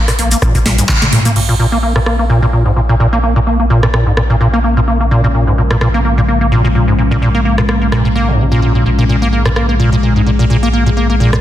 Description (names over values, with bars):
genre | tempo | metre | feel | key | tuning
acid house | 128 BPM | 4/4 | swing 55% on 16ths | Bb minor | A4 = 440 Hz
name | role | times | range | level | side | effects
acid bass, square | riff | 0.0-11.4 s | Ab2 to Bb3 | -12 LUFS | equal | tube saturation, analog chorus, sidechain pumping, dub echo
booming analog drum machine | drums | 0.1-11.4 s | crash cymbal, handclaps, hi-hat, rim click, shaker, snare drum, toms | -17 LUFS | equal | none
warm sub bass | bass | 0.2-11.4 s | Bb1 to Bb2 | -15 LUFS | equal | tube saturation, sidechain pumping
electronic kick drum | drums | 0.4-1.0 s | none | -15 LUFS | equal | none
dark analog pad | sustained chords | 1.4-11.4 s | Ab3 to Bb4 | -18 LUFS | left 2 dB | lush chorus, sidechain pumping
room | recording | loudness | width
light reverb | dense, heavily limited modern master | -10 LUFS | side -12 dB against mid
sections
0.0-1.4 A section; 1.4-11.4 B section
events
filter sweep on acid bass 0.0-1.4; drum fill 0.7-1.4; band accent 0.9; filter sweep on analog synth pad 1.4-11.4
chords
0.0 N.C.; 1.4 Bbm7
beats
0.42 0.89 | 1.36 1.83 2.30 2.77 | 3.23 3.70 4.17 4.64 | 5.11 5.58 6.05 6.51 | 6.98 7.45 7.92 8.39 | 8.86 9.33 9.80 10.27 | 10.73 11.20